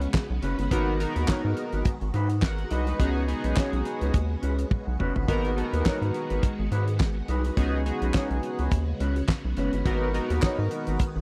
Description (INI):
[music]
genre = early-eighties boogie funk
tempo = 105 BPM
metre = 4/4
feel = swing 56% on 16ths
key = G# minor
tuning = A4 = 439 Hz
[part]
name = phased string machine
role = sustained chords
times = 0.0-11.2 s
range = C#3 to F#4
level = -38 LUFS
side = equal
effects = ensemble chorus, phaser
[part]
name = mellow electric guitar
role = riff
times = 0.0-11.2 s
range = C#4 to C#5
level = -35 LUFS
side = equal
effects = lush chorus
[part]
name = rubbery square bass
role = bass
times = 0.0-11.2 s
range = F#1 to G#2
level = -30 LUFS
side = equal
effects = none
[part]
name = damped 70s drum kit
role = drums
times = 0.0-11.1 s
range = handclaps, hi-hat, kick drum, snare drum, toms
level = -28 LUFS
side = equal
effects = none
[part]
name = chorused polysynth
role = accompaniment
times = 0.7-11.0 s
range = B3 to F#5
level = -33 LUFS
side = equal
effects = none
[sound]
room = little or no reverb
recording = dry, close 1970s-style studio recording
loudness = -26 LUFS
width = mono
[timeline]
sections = 0.0-11.2 A section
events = drum fill 4.7-5.3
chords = 0.0 C#7sus4; 0.7 G#m7; 3.0 C#7sus4; 5.3 G#m7; 7.6 C#7sus4; 9.9 G#m7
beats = 0.14 | 0.71 1.28 1.86 2.43 | 3.00 3.57 4.14 4.71 | 5.29 5.86 6.43 7.00 | 7.57 8.14 8.71 9.29 | 9.86 10.43 11.00